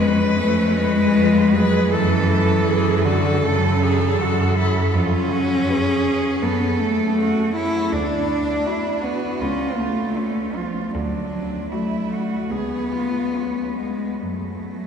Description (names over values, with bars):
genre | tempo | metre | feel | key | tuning
classical, lyrical piece for cello ensemble | 66-83 BPM | 4/4 | rubato | F# minor | A4 = 440 Hz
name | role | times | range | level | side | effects
clear cello | melody | 0.0-14.0 s | E#4 to B4 | -27 LUFS | left 2 dB | none
warm cello | second line | 0.0-14.9 s | A3 to A4 | -26 LUFS | right 4 dB | none
warm cello | accompaniment | 0.0-14.9 s | C#3 to E4 | -21 LUFS | left 2 dB | none
clear cello | bass | 0.0-14.9 s | C#2 to F#2 | -24 LUFS | right 1 dB | none
room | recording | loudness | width
wet cathedral reverb, RT60 6.2 s | heard from further back in the room | -18 LUFS | side -7 dB against mid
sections
0.0-14.9 A section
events
none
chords
0.0 C#7/E#; 1.9 F#m; 4.9 C#7/E#; 6.4 F#m; 7.9 D69; 9.4 C#; 11.0 D; 12.5 C#7; 14.2 F#m